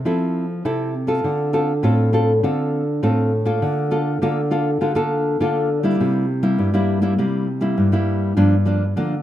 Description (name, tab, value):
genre	samba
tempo	101 BPM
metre	4/4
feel	straight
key	unclear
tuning	A4 = 440 Hz
part	nylon-string guitar	solo	0.0-9.2 s	G2 to A4	-17 LUFS	equal	none
room	light reverb, small room ambience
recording	rough home demo mix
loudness	-17 LUFS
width	side -12 dB against mid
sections	0.0-9.2 A section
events	none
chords	0.0 Fmaj7; 1.3 Dm7; 3.6 Bbmaj7/D; 6.0 C7; 8.4 Gm7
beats	0.06 0.66 | 1.25 1.85 2.44 3.04 | 3.63 4.22 4.82 5.41 | 6.00 6.60 7.19 7.78 | 8.37 8.96